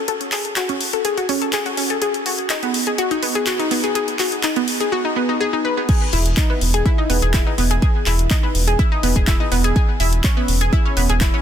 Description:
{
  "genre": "progressive house",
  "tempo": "124 BPM",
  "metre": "4/4",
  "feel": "straight",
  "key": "unclear",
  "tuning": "A4 = 440 Hz",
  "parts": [
    { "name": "analog pluck", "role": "arpeggios", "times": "0.0-11.4 s", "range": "B3 to G#5", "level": "-20 LUFS", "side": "left 1 dB", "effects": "chorus, sidechain pumping, ping-pong delay" },
    { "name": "deep house drum kit", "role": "drums", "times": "0.1-11.3 s", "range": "crash cymbal, handclaps, hi-hat", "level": "-24 LUFS", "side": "left 1 dB", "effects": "sidechain pumping on hats, high-pass filter on hats, high-pass filter on snare, sidechain pumping on cymbals, high-pass filter on cymbals" },
    { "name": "electronic kick drum", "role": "drums", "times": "5.9-11.3 s", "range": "none", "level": "-17 LUFS", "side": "equal", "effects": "none" },
    { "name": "round analog bass", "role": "bass", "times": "6.1-11.3 s", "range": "E1", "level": "-18 LUFS", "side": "equal", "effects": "tube saturation, sidechain pumping" }
  ],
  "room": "light reverb",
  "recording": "dense, heavily limited modern master",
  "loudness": "-16 LUFS",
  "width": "side -9 dB against mid",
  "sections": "0.0-5.9 A section; 5.9-11.4 B section",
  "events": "build-up 0.0-5.9; drop 5.9-11.4",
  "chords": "0.0 F#madd9; 2.0 G#m7; 5.9 Emaj7; 9.8 C#m7/E",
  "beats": "| 0.08 0.56 1.05 1.53 | 2.02 2.50 2.98 3.47 | 3.95 4.44 4.92 5.40 | 5.89 6.37 6.86 7.34 | 7.82 8.31 8.79 9.28 | 9.76 10.24 10.73 11.21"
}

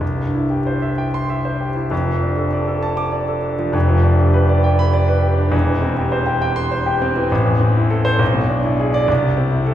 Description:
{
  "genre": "classical, romantic character piece for solo piano",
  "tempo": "60-70 BPM (dotted quarters)",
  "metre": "6/8",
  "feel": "rubato",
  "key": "C major",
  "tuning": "A4 = 440 Hz",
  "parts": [
    { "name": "warm concert grand piano", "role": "solo", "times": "0.0-9.7 s", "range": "E1 to D6", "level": "-15 LUFS", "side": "equal", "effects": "none" }
  ],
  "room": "wet recital hall reverb, RT60 1.8 s",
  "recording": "recorded in a church or concert hall",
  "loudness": "-15 LUFS",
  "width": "side -11 dB against mid",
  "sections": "0.0-9.7 A section",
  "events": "none",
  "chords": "0.0 C; 1.9 Dm/F; 3.7 G7/F; 5.5 C/E; 7.3 Am; 8.2 E7/B; 9.1 Am/C",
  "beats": "| 0.01 0.98 | 1.91 2.83 | 3.74 4.65 | 5.53 6.43 | 7.32 8.20 | 9.09"
}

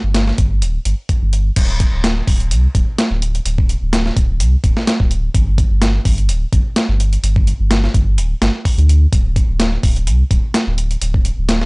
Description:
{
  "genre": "breakbeat, breaks",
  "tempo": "127 BPM",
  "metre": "4/4",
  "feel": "swing 54% on 16ths",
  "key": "unclear",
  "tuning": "A4 = 440 Hz",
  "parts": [
    { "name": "saturated sub bass", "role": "bass", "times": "0.0-11.7 s", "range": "D1 to D2", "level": "-15 LUFS", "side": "equal", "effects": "tube saturation" },
    { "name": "dusty soul sampler-style drum kit", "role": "drums", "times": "0.1-11.7 s", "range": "crash cymbal, hi-hat, kick drum, snare drum", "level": "-16 LUFS", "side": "equal", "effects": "overdrive, studio reverb" }
  ],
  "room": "little or no reverb",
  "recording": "dry, gritty hardware recording, transformer saturation, nothing above 10.8 kHz",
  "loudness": "-13 LUFS",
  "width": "side -30 dB against mid",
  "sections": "0.0-1.6 A section; 1.6-11.7 B section",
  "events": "drop 1.6-11.7",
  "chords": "none",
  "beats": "0.15 0.62 1.09 | 1.56 2.04 2.51 2.98 | 3.45 3.93 4.40 4.87 | 5.34 5.82 6.29 6.76 | 7.23 7.71 8.18 8.65 | 9.12 9.60 10.07 10.54 | 11.01 11.48"
}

